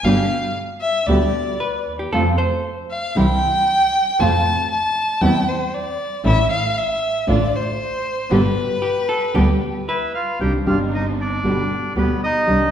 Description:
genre	tango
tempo	116 BPM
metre	4/4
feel	rubato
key	unclear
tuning	A4 = 436 Hz
part	warm violin	second line	0.0-9.9 s	B4 to A5	-20 LUFS	left 1 dB	none
part	nylon-string guitar	accompaniment	0.0-12.6 s	B2 to G4	-21 LUFS	equal	none
part	clear double bass	bass	0.0-12.7 s	G1 to F2	-22 LUFS	right 1 dB	none
part	muted studio string section	stabs	0.1-12.7 s	G3 to G4	-29 LUFS	right 2 dB	none
part	vintage hollow-body jazz guitar	second line	1.6-2.7, 8.8-10.4 s	G4 to C5	-24 LUFS	left 1 dB	none
part	bandoneon	melody	9.9-12.7 s	B3 to G5	-22 LUFS	right 1 dB	none
room	wet scoring stage reverb, RT60 1.5 s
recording	recorded in a church or concert hall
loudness	-17 LUFS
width	side -9 dB against mid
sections	0.0-10.4 A section; 10.4-12.7 B section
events	violin solo 0.0-10.4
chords	0.0 G; 2.1 F; 3.2 C; 4.2 F; 5.2 C/E; 6.3 A; 7.3 Dm/A; 8.3 G; 10.4 Cmadd9; 11.4 G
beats	| 0.05 0.56 1.08 1.60 | 2.13 2.65 3.17 3.69 | 4.20 4.71 5.23 5.74 | 6.25 6.77 7.28 7.80 | 8.31 8.83 9.35 9.87 | 10.40 10.92 11.44 11.96 | 12.48

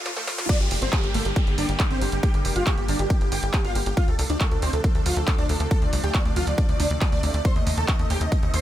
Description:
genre	uplifting trance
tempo	138 BPM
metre	4/4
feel	straight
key	G minor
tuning	A4 = 445 Hz
part	supersaw chords	melody	0.0-8.6 s	A3 to C6	-28 LUFS	equal	ensemble chorus, cassette tape, sidechain pumping, ping-pong delay
part	lush unison pad	sustained chords	0.0-8.6 s	C3 to G4	-32 LUFS	equal	chorus, sidechain pumping
part	tight sequencer bass	bass	0.0-8.6 s	F1 to F2	-26 LUFS	equal	sidechain pumping
part	riser and downlifter	sound effects	0.0-4.0 s	none	-33 LUFS	equal	none
part	punchy analog drum machine	drums	0.1-8.6 s	crash cymbal, handclaps, hi-hat, snare drum	-30 LUFS	right 1 dB	high-pass filter on hats, high-pass filter on snare, high-pass filter on cymbals, high-pass filter on room
part	electronic kick drum	drums	0.5-8.4 s	none	-22 LUFS	equal	none
room	digital ambience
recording	high-pass filter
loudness	-20 LUFS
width	side -12 dB against mid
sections	0.5-8.6 A section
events	drum fill 0.0-0.5; riser 0.0-0.5; drop 0.5-8.6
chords	0.5 Gm; 4.0 Dm7; 7.4 Adim/Eb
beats	0.06 | 0.49 0.93 1.36 1.80 | 2.23 2.67 3.10 3.54 | 3.97 4.41 4.84 5.28 | 5.71 6.14 6.58 7.01 | 7.45 7.88 8.32

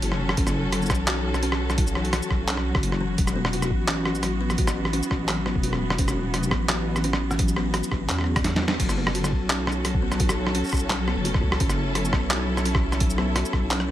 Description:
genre	half-time drum and bass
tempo	171 BPM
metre	4/4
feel	swing 53% on 16ths, half-time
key	F# minor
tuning	A4 = 441 Hz
part	rich symphonic string section	sustained chords	0.0-13.9 s	E3 to A4	-31 LUFS	right 1 dB	sidechain pumping
part	buzzing kalimba	arpeggios	0.0-13.9 s	E3 to F#4	-29 LUFS	left 2 dB	vintage 12-bit sampler grit, tape echo
part	deep soft wobble bass	bass	0.0-13.9 s	E1 to E2	-27 LUFS	equal	chorus
part	boom bap sampler-style drum kit	drums	0.0-13.9 s	crash cymbal, handclaps, hi-hat, rim click, shaker, snare drum	-27 LUFS	equal	none
part	electronic kick drum	drums	0.4-13.6 s	none	-25 LUFS	equal	none
room	light reverb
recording	none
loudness	-21 LUFS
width	side -13 dB against mid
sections	0.0-8.8 A section; 8.8-13.9 A section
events	drop 0.0-8.8, 8.8-13.9; kick drops out 8.4-8.8; drum fill 8.4-8.8; band accent 8.7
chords	0.0 F#m; 3.2 E5; 8.8 F#m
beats	0.02 | 0.38 0.73 1.08 1.43 | 1.78 2.13 2.48 2.83 | 3.18 3.53 3.88 4.24 | 4.59 4.94 5.29 5.64 | 5.99 6.34 6.69 7.04 | 7.39 7.74 8.10 8.45 | 8.80 9.15 9.50 9.85 | 10.20 10.55 10.90 11.25 | 11.60 11.95 12.30 12.66 | 13.01 13.36 13.71

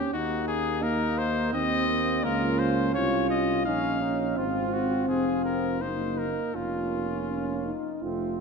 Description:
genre	classical, brass quintet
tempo	84 BPM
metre	3/4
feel	uneven beats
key	Bb minor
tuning	A4 = 440 Hz
part	bright trumpet	melody	0.0-8.0 s	F4 to F5	-30 LUFS	left 5 dB	none
part	warm French horn	accompaniment	0.0-8.4 s	Bb3 to F4	-30 LUFS	left 3 dB	none
part	dark bass trombone	bass	0.0-8.4 s	F1 to Eb2	-32 LUFS	right 1 dB	none
part	clear flugelhorn	second line	0.1-8.4 s	C4 to F4	-33 LUFS	right 7 dB	none
part	clear trombone	accompaniment	0.1-8.4 s	A3 to Db4	-33 LUFS	right 4 dB	none
room	wet concert hall reverb, RT60 2.4 s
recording	none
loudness	-24 LUFS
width	side -5 dB against mid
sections	0.0-8.4 A section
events	none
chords	0.1 Ebmadd11; 1.5 Cm7/Eb; 2.2 Bbm/Db; 3.7 Bbm; 4.4 Fm/Ab; 5.8 Ebm/Gb; 6.5 Bbm/F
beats	| 0.14 0.83 1.53 | 2.24 2.95 3.66 | 4.37 5.09 5.81 | 6.55 7.29 8.03

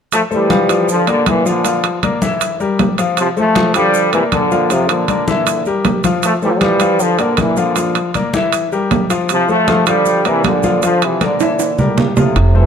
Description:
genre	latin, salsa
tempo	157 BPM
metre	4/4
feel	straight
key	unclear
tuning	A4 = 441 Hz
part	bright trombone section	melody	0.1-12.7 s	F2 to A3	-15 LUFS	equal	none
part	congas	percussion	0.1-12.7 s	none	-20 LUFS	left 1 dB	none
part	maracas	percussion	0.1-12.4 s	none	-30 LUFS	right 8 dB	none
part	timbales	percussion	0.1-12.6 s	none	-20 LUFS	right 8 dB	none
part	bright baby grand piano	accompaniment	0.3-12.7 s	E3 to F5	-18 LUFS	left 4 dB	none
part	deep dub fingered electric bass	bass	12.4-12.7 s	F1	-9 LUFS	right 1 dB	none
part	bongos	percussion	12.4-12.7 s	none	-27 LUFS	left 8 dB	none
room	moderate plate reverb, RT60 2.5 s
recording	dark, warm production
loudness	-12 LUFS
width	side -7 dB against mid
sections	0.1-12.4 A section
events	drum fill 11.2-12.4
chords	0.1 F; 0.9 Bb; 2.4 Edim; 3.2 F; 3.9 Bb6; 4.7 Bb; 5.5 Edim; 6.2 F; 7.0 Bb; 8.5 Edim; 9.3 F; 10.1 Bb69; 10.8 Bb; 11.6 Gm13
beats	| 0.12 0.51 0.89 1.27 | 1.65 2.03 2.41 2.79 | 3.17 3.56 3.94 4.32 | 4.70 5.08 5.46 5.85 | 6.23 6.61 7.00 7.38 | 7.76 8.14 8.53 8.91 | 9.29 9.68 10.06 10.44 | 10.83 11.21 11.59 11.98 | 12.36

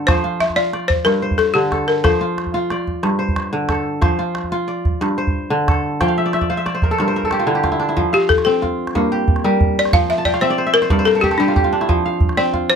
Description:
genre	west african traditional, West African string and xylophone music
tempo	122 BPM (dotted quarters)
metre	12/8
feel	straight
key	F major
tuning	A4 = 440 Hz
part	kora	arpeggios	0.0-12.8 s	G2 to A5	-18 LUFS	right 1 dB	none
part	calabash	percussion	0.0-12.6 s	none	-20 LUFS	right 1 dB	none
part	balafon	melody	0.1-2.7, 8.1-12.8 s	D4 to F5	-16 LUFS	left 3 dB	none
room	light reverb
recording	close, detailed microphones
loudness	-15 LUFS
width	side -6 dB against mid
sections	0.0-8.0 A section; 8.0-12.8 B section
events	kora fill 6.0-8.0, 10.2-11.9; balafon solo 8.0-12.8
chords	0.1 F; 1.1 Gm; 2.0 F; 3.0 G5; 4.0 F; 5.0 G5; 6.0 F; 7.0 G5; 8.0 F; 9.0 Gm; 9.9 F5; 10.9 N.C.; 11.9 F5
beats	| 0.07 0.57 1.06 1.55 | 2.05 2.54 3.04 3.53 | 4.03 4.52 5.01 5.51 | 6.00 6.50 6.99 7.48 | 7.97 8.46 8.95 9.44 | 9.93 10.42 10.91 11.39 | 11.88 12.37

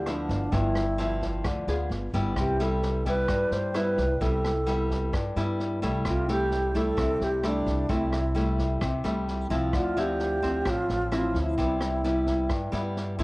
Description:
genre	bossa nova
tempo	130 BPM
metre	4/4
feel	straight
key	C major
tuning	A4 = 440 Hz
part	alto flute	melody	0.0-13.0 s	D4 to C5	-29 LUFS	right 1 dB	cassette tape
part	nylon-string guitar	accompaniment	0.0-13.2 s	G2 to Ab4	-29 LUFS	left 1 dB	cassette tape
part	upright bass	bass	0.0-13.2 s	G1 to G2	-30 LUFS	equal	none
part	vintage drum kit	drums	0.1-13.2 s	kick drum, rim click, snare drum	-35 LUFS	equal	none
room	light reverb, small room ambience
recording	home recording on cassette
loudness	-24 LUFS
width	side -22 dB against mid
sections	0.0-13.2 A section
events	none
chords	0.0 G13; 1.9 G7b9; 2.4 Cmaj7; 6.1 Fmaj9/C (rootless); 9.7 Dm9; 11.6 Cmaj7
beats	0.06 | 0.52 0.98 1.45 1.91 | 2.37 2.83 3.29 3.75 | 4.21 4.67 5.13 5.59 | 6.05 6.51 6.97 7.43 | 7.89 8.35 8.81 9.28 | 9.74 10.20 10.66 11.12 | 11.58 12.04 12.50 12.96

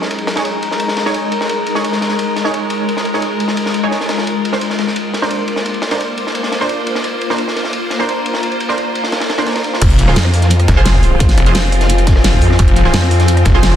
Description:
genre	dark technical drum and bass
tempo	173 BPM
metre	4/4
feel	straight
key	F minor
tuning	A4 = 440 Hz
part	swarming drone	sustained chords	0.0-13.8 s	F3 to C5	-20 LUFS	left 2 dB	built-in reverb, sidechain pumping
part	orchestra-hit-like synth stab	stabs	0.0-13.8 s	D4 to Db5	-22 LUFS	right 4 dB	built-in reverb, dub echo
part	crunchy breakbeat drum kit	drums	0.0-13.7 s	ride cymbal, snare drum	-22 LUFS	equal	high-pass filter on cymbals, small room ambience, high-pass filter on snare, high-pass filter on room
part	warbly tape-like pad	texture	0.0-13.8 s	F4 to D6	-23 LUFS	left 3 dB	chorus, built-in reverb, sidechain pumping
part	snarling distorted saw bass	bass	9.8-13.8 s	F1	-13 LUFS	equal	distortion
part	dubstep drum kit	drums	9.8-13.7 s	crash cymbal, hi-hat, rim click, snare drum	-19 LUFS	equal	small room ambience
part	electronic kick drum	drums	9.8-13.8 s	none	-13 LUFS	equal	small room ambience
part	formant-sweep wobble bass	bass	10.2-13.4 s	F1 to F2	-12 LUFS	equal	chorus
room	light reverb, digital ambience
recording	dense, heavily limited modern master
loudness	-12 LUFS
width	side -10 dB against mid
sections	0.0-9.8 A section; 9.8-13.8 B section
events	drop 9.8-13.8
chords	0.0 Absus4; 4.3 Bbadd9; 9.8 Fm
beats	| 0.10 0.45 0.80 1.15 | 1.49 1.84 2.19 2.53 | 2.88 3.23 3.57 3.92 | 4.27 4.61 4.96 5.31 | 5.65 6.00 6.35 6.69 | 7.04 7.39 7.73 8.08 | 8.43 8.78 9.12 9.47 | 9.81 10.16 10.51 10.86 | 11.20 11.55 11.90 12.24 | 12.59 12.94 13.28 13.63

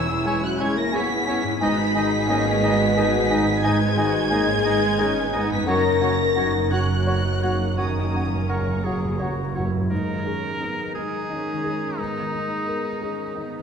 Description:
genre	cinematic, emotional film score for orchestra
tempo	88 BPM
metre	3/4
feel	rubato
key	G# minor from 9.9 s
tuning	A4 = 440 Hz
part	muted studio violin section	melody	0.0-13.6 s	A#5 to B6	-29 LUFS	equal	none
part	bright oboe	second line	0.0-13.6 s	D#4 to D#5	-31 LUFS	right 2 dB	none
part	muted studio violin section	second line	0.0-13.6 s	G#3 to B5	-33 LUFS	left 2 dB	none
part	warm clarinet	second line	0.0-9.9 s	D#4 to A#4	-31 LUFS	left 3 dB	none
part	felt-muted upright piano	accompaniment	0.0-13.6 s	E2 to C#5	-30 LUFS	left 1 dB	none
part	muted studio viola section	accompaniment	0.0-13.6 s	G#3 to G#4	-30 LUFS	left 1 dB	none
part	dark French horn section	sustained chords	0.0-13.6 s	B2 to A#4	-27 LUFS	left 4 dB	none
part	concert harp	arpeggios	0.0-13.6 s	E2 to C#5	-35 LUFS	left 10 dB	none
part	muted studio cello section	bass	0.0-13.6 s	E2 to D#4	-29 LUFS	right 4 dB	none
part	muted studio double bass section	bass	0.0-9.7 s	E1 to G#1	-28 LUFS	right 5 dB	none
part	mellow silver concert flute	second line	0.3-9.6 s	F#5 to G#5	-32 LUFS	equal	none
part	timpani	percussion	5.7-9.9 s	F#2	-30 LUFS	right 2 dB	none
room	wet scoring stage reverb, RT60 1.5 s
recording	none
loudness	-20 LUFS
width	side -6 dB against mid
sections	0.0-9.9 A section; 9.9-13.6 B section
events	timpani fill 5.7-9.9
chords	0.0 C#m/E; 1.6 G#madd9; 5.7 F#; 9.9 G#madd9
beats	0.26 0.94 | 1.61 2.29 2.96 | 3.64 4.32 4.99 | 5.67 6.37 7.07 | 7.78 8.49 9.20 | 9.91 10.61 11.30 | 11.99 12.67 13.36

